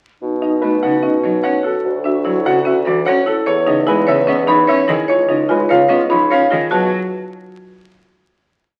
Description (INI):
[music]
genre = classical, minimalist pattern music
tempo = 148 BPM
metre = 4/4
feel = straight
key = B mixolydian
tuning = A4 = 440 Hz
[part]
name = mellow hollow alto flute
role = second line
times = 0.2-6.4 s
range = D#4 to G#4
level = -23 LUFS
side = equal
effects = none
[part]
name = mellow bassoon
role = bass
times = 0.2-6.9 s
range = C#2 to B2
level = -22 LUFS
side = equal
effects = none
[part]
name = clear grand piano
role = melody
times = 0.4-6.9 s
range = G#4 to F#5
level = -23 LUFS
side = equal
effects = none
[part]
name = marimba with medium hard mallets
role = arpeggios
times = 0.4-6.9 s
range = C#4 to C#5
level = -21 LUFS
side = equal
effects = none
[part]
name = rich cello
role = accompaniment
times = 0.6-6.9 s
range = C#3 to C#4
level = -26 LUFS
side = equal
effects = none
[part]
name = xylophone with rubber mallets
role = arpeggios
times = 3.9-6.9 s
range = G#5 to B5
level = -22 LUFS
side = equal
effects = none
[sound]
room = wet large studio reverb, RT60 1.3 s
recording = very old 78 rpm record, vinyl crackle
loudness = -15 LUFS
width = mono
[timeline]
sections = 0.2-6.7 A section; 6.7-8.3 final chord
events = none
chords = 0.2 B; 1.8 Dmaj7; 3.5 Emaj7; 5.1 C#7; 6.7 B5